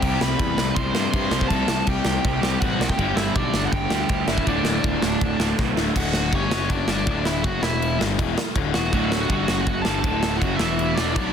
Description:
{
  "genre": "punk rock",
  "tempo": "162 BPM",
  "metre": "4/4",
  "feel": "straight",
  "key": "D major",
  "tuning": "A4 = 439 Hz",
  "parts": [
    { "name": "nasal lead guitar with a parked wah", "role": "melody", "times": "0.0-11.3 s", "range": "C#4 to C6", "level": "-27 LUFS", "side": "right 2 dB", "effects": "overdrive, ping-pong delay" },
    { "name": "crunchy overdriven guitar", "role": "riff", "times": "0.0-11.3 s", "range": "D2 to C4", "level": "-26 LUFS", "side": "left 13 dB", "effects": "none" },
    { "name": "distorted electric guitar", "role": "riff", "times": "0.0-6.0, 8.9-11.3 s", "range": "D2 to C4", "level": "-28 LUFS", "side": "right 16 dB", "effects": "distortion" },
    { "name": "fuzz picked electric bass", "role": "bass", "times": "0.0-11.3 s", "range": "D1 to G2", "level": "-27 LUFS", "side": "equal", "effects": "overdrive" },
    { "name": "big rock drum kit", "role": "drums", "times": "0.0-11.2 s", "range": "crash cymbal, kick drum, snare drum", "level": "-24 LUFS", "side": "right 1 dB", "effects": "none" }
  ],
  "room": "little or no reverb",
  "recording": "dense, heavily limited modern master",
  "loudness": "-19 LUFS",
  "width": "side -8 dB against mid",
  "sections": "0.0-6.0 A section; 6.0-11.3 B section",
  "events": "drum fill 5.6-6.0",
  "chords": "0.0 C5; 3.0 G5; 4.5 D5; 6.0 D; 6.5 F#5; 6.9 D; 7.6 E5; 8.0 D; 9.5 F#5; 9.9 D; 10.6 E5; 11.0 D",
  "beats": "| 0.03 0.40 0.77 1.14 | 1.51 1.88 2.25 2.62 | 2.99 3.36 3.73 4.10 | 4.47 4.84 5.21 5.58 | 5.95 6.33 6.70 7.07 | 7.44 7.81 8.18 8.55 | 8.92 9.29 9.67 10.04 | 10.41 10.78 11.15"
}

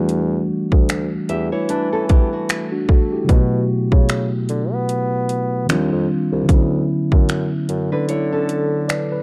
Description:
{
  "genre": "contemporary R&B",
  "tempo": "75 BPM",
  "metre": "4/4",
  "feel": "swing 58% on 16ths",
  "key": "unclear",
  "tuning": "A4 = 440 Hz",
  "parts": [
    { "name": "mellow tine electric piano", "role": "accompaniment", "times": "0.0-9.2 s", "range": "B2 to D5", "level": "-22 LUFS", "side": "equal", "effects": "none" },
    { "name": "dark bassoon", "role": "bass", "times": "0.0-9.1 s", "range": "B#1 to B3", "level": "-26 LUFS", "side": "equal", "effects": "none" },
    { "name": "trap drum kit", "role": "drums", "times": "0.1-9.1 s", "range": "finger snaps, hi-hat, kick drum", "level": "-18 LUFS", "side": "equal", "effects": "none" },
    { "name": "nylon-string guitar", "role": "arpeggios", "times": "1.3-9.2 s", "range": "A3 to E5", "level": "-27 LUFS", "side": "equal", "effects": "tape echo" }
  ],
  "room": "studio ambience",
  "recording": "dark, warm production",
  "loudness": "-19 LUFS",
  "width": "mono",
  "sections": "0.0-9.2 A section",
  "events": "none",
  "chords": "0.0 Em11; 3.3 B7(no3); 5.7 D#maj13; 6.5 Dmaj13",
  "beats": "| 0.09 0.89 1.69 2.49 | 3.29 4.09 4.89 5.69 | 6.49 7.29 8.09 8.89"
}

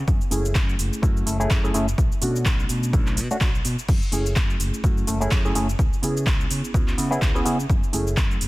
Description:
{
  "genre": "filtered disco house",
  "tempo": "126 BPM",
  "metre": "4/4",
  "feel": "swing 56% on 16ths",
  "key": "F# minor",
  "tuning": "A4 = 438 Hz",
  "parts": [
    { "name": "modern bright fingered electric bass", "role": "bass", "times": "0.0-8.5 s", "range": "F#1 to C#3", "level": "-26 LUFS", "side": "equal", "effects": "sidechain pumping" },
    { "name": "electronic kick drum", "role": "drums", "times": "0.1-8.3 s", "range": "none", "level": "-22 LUFS", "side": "equal", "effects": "none" },
    { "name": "house drum kit", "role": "drums", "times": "0.1-8.5 s", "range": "crash cymbal, handclaps, hi-hat, shaker", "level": "-29 LUFS", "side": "equal", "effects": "sidechain pumping on hats, sidechain pumping on perc, sidechain pumping on cymbals" },
    { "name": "reed electric piano", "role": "accompaniment", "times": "0.3-8.5 s", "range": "A3 to B4", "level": "-27 LUFS", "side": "equal", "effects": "phaser, sidechain pumping" }
  ],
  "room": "little or no reverb",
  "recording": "dense, heavily limited modern master",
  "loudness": "-19 LUFS",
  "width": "side -19 dB against mid",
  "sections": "0.0-8.5 A section",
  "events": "none",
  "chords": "0.1 F#m9; 2.0 Bm9; 3.9 F#m9; 5.8 C#m7; 7.7 F#m9",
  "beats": "| 0.08 0.55 1.03 1.51 | 1.98 2.46 2.94 3.41 | 3.89 4.36 4.84 5.32 | 5.79 6.27 6.74 7.22 | 7.70 8.17"
}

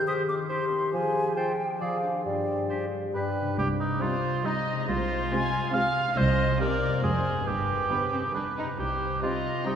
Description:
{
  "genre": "cinematic, playful, whimsical film cue",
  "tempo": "138 BPM",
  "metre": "3/4",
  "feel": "straight",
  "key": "C minor",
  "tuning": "A4 = 441 Hz",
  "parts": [
    { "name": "mellow hollow silver concert flute", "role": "second line", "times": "0.0-3.3 s", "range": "D5 to Eb6", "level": "-31 LUFS", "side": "equal", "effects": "none" },
    { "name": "mellow French horn section", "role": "sustained chords", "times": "0.0-3.3 s", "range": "G4 to Ab4", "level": "-32 LUFS", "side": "left 2 dB", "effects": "none" },
    { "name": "concert harp", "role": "arpeggios", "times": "0.0-9.8 s", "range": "F2 to D5", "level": "-33 LUFS", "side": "left 4 dB", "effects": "none" },
    { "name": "bright clarinet", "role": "second line", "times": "0.1-3.3 s", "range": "F4 to Ab4", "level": "-41 LUFS", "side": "left 1 dB", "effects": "none" },
    { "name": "warm cor anglais", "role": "second line", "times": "0.1-9.8 s", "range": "Eb4 to F5", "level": "-30 LUFS", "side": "right 2 dB", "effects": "none" },
    { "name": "warm bassoon", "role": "accompaniment", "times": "0.9-3.5 s", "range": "F3 to G3", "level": "-36 LUFS", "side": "right 2 dB", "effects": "none" },
    { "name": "muted chamber cello section", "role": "bass", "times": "3.6-9.1 s", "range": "C2 to G2", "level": "-34 LUFS", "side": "right 2 dB", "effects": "none" },
    { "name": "muted chamber double bass section", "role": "bass", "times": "3.6-9.1 s", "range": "F1 to C2", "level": "-34 LUFS", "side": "right 3 dB", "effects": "none" },
    { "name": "muted chamber violin section", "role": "melody", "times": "4.0-9.8 s", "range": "B4 to Ab5", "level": "-33 LUFS", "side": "left 2 dB", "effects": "none" },
    { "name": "muted chamber violin section", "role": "second line", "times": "4.0-9.8 s", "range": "B3 to F4", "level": "-37 LUFS", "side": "equal", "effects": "none" },
    { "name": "muted chamber viola section", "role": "accompaniment", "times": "4.0-9.8 s", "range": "C3 to Ab3", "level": "-36 LUFS", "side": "right 2 dB", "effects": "none" }
  ],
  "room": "wet cathedral reverb, RT60 4.8 s",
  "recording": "recorded in a church or concert hall",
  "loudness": "-25 LUFS",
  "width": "side -8 dB against mid",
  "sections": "0.0-3.6 A section; 3.6-9.8 B section",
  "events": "none",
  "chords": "0.0 Cm/Eb; 0.9 Fm; 1.8 Ddim/F; 2.2 G5; 3.1 G; 3.6 Cm; 4.9 Fm/C; 6.2 Cm; 7.0 Fm; 7.5 G; 8.8 Cm",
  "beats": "0.07 0.50 | 0.93 1.37 1.81 | 2.25 2.70 3.14 | 3.59 4.02 4.45 | 4.88 5.31 5.74 | 6.17 6.60 7.04 | 7.47 7.91 8.35 | 8.79 9.23 9.66"
}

